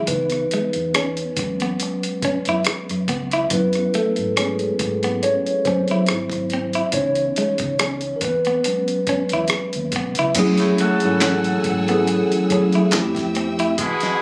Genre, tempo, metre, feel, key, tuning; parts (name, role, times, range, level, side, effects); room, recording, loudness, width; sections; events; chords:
R&B, neo-soul; 70 BPM; 4/4; swing 54% on 16ths; F# dorian; A4 = 440 Hz
mellow tine electric piano; accompaniment; 0.0-13.8 s; E3 to C#5; -23 LUFS; equal
vintage muted fingered electric bass; bass; 0.1-14.1 s; G#1 to F#3; -29 LUFS; equal
dusty soul sampler-style drum kit; drums; 0.1-14.2 s; crash cymbal, handclaps, hi-hat, kick drum, rim click, snare drum; -27 LUFS; equal
clean electric guitar; second line; 0.5-13.7 s; G#3 to E4; -28 LUFS; equal; spring reverb
dark studio string section; sustained chords; 10.4-14.2 s; G#4 to E6; -32 LUFS; equal
warm horn section; stabs; 10.6-14.2 s; B2 to A4; -27 LUFS; equal; tape echo
light reverb; recorded on a phone in the room, studio ambience, compression; -20 LUFS; mono
0.0-10.4 A section; 10.4-14.2 B section
tine electric piano solo 0.0-10.4
0.1 C#m9; 1.4 E69; 3.5 F#m9; 6.1 G#7b13; 6.9 C#m9; 8.2 E69; 10.4 F#m9; 12.9 Fmaj9